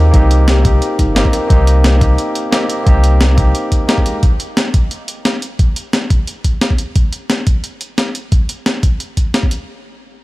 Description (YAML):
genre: liquid drum and bass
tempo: 176 BPM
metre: 4/4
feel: straight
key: unclear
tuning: A4 = 440 Hz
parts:
  - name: barky tine electric piano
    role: accompaniment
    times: 0.0-4.3 s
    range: Ab3 to G4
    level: -19 LUFS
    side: equal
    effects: overdrive, dub echo
  - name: kalimba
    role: arpeggios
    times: 0.0-1.4 s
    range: Eb4 to Bb4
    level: -24 LUFS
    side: left 2 dB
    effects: digital delay
  - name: warm sub bass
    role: bass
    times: 0.0-3.5 s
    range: G1 to Eb2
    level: -10 LUFS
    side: equal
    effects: none
  - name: breakbeat sampler-style drum kit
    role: drums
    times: 0.1-9.6 s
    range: hi-hat, snare drum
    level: -18 LUFS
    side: equal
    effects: none
  - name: electronic kick drum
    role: drums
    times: 0.1-9.5 s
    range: none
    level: -12 LUFS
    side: equal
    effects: none
room: little or no reverb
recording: none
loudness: -12 LUFS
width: side -20 dB against mid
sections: 0.0-9.7 A section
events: none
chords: 0.0 Cm7; 4.1 Absus2; 9.7 N.C.